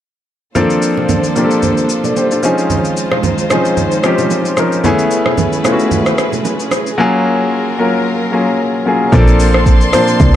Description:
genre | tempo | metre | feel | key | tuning
amapiano | 112 BPM | 4/4 | swing 55% on 16ths | unclear | A4 = 441 Hz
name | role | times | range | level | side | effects
warm grand piano | accompaniment | 0.6-10.4 s | F3 to D5 | -14 LUFS | left 2 dB | none
warm studio string section | sustained chords | 0.6-10.4 s | Db3 to C6 | -19 LUFS | right 1 dB | none
afro-pop drum kit | drums | 0.6-10.3 s | hi-hat, kick drum, rim click, shaker | -16 LUFS | equal | overdrive, vintage 12-bit sampler grit
congas and bongos | percussion | 0.6-6.8 s | none | -20 LUFS | right 5 dB | none
woody log drum bass | bass | 9.1-10.4 s | Bb1 to Bb2 | -12 LUFS | equal | none
room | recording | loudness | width
light reverb, small room ambience | dark, warm production | -11 LUFS | side -11 dB against mid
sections
0.6-9.1 A section; 9.1-10.4 B section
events
drop 9.1-10.4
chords
0.6 Bbmaj9; 2.4 Dbmaj9; 4.8 Amaj9; 7.0 Gbmaj9; 9.1 Bbmaj9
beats
| 0.56 1.09 1.63 2.16 | 2.70 3.23 3.77 4.31 | 4.84 5.38 5.91 6.45 | 6.99 7.52 8.06 8.59 | 9.13 9.66 10.20

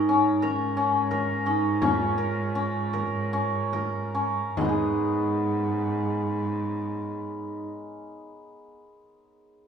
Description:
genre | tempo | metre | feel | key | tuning
contemporary instrumental, chamber music in an uneven meter | 139-181 BPM (eighths) | 7/8 | straight | G# dorian | A4 = 441 Hz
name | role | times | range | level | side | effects
vibraphone with medium hard mallets | second line | 0.0-7.6 s | C#4 to E#4 | -29 LUFS | right 2 dB | none
hammered dulcimer | arpeggios | 0.0-9.2 s | G#3 to A#4 | -27 LUFS | left 2 dB | none
warm cello | bass | 0.0-7.6 s | G#2 | -31 LUFS | right 3 dB | none
frame drum | percussion | 0.4-5.0 s | none | -32 LUFS | left 5 dB | none
room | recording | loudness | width
moderate recital hall reverb, RT60 1.8 s | minimal, uncompressed stereo recording | -24 LUFS | side -7 dB against mid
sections
0.0-4.6 A section; 4.6-7.6 B section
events
slowing down 0.0-4.6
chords
0.0 A#m/G#; 4.6 G#m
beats
0.10 0.43 0.77 1.11 1.46 | 1.82 2.18 2.55 2.93 3.32 3.73 4.14 | 4.57 5.00 5.43 5.86 6.28 6.71 7.14

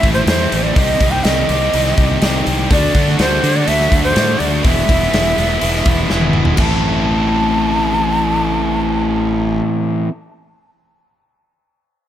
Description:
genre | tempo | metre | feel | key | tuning
quiet-loud alternative rock | 124 BPM | 4/4 | straight | A dorian | A4 = 440 Hz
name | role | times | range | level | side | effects
breathy mellow shakuhachi | melody | 0.0-9.6 s | C5 to A5 | -19 LUFS | equal | tape echo
distorted electric guitar | riff | 0.0-10.1 s | A2 to G4 | -18 LUFS | equal | distortion
fuzz fingered electric bass | bass | 0.0-9.6 s | E1 to D3 | -19 LUFS | equal | overdrive
big rock drum kit | drums | 0.0-6.7 s | crash cymbal, hi-hat, kick drum, snare drum, toms | -17 LUFS | equal | none
room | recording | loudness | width
little or no reverb | none | -13 LUFS | side -11 dB against mid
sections
0.0-6.6 A section; 6.6-10.5 B section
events
drum fill 6.1-6.6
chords
0.0 Am; 0.8 Cm; 2.7 D; 4.6 E; 6.6 Am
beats
0.27 | 0.75 1.24 1.72 2.21 | 2.70 3.18 3.67 4.16 | 4.64 5.13 5.61 6.10 | 6.58 7.07 7.56 8.04 | 8.53 9.01 9.50 9.98

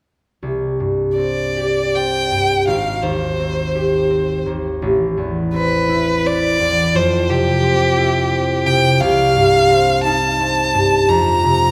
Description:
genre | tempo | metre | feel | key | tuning
classical, impressionist duo for violin and harp | 74-89 BPM | 3/4 | rubato | unclear | A4 = 443 Hz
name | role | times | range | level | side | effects
concert harp | accompaniment | 0.4-11.7 s | Ab1 to G4 | -19 LUFS | equal | none
clear violin | melody | 1.2-11.7 s | G4 to Bb5 | -19 LUFS | equal | none
room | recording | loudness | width
wet scoring stage reverb, RT60 2.0 s | none | -17 LUFS | mono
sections
0.4-11.7 A section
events
none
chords
0.4 Csus2; 2.7 Abmaj7; 4.8 Amadd9; 7.0 Fsus2; 9.0 Cmadd11; 11.1 F5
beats
| 0.42 1.17 1.95 | 2.67 3.40 4.11 | 4.83 5.54 6.26 | 6.96 7.64 8.32 | 9.02 9.71 10.40 | 11.09

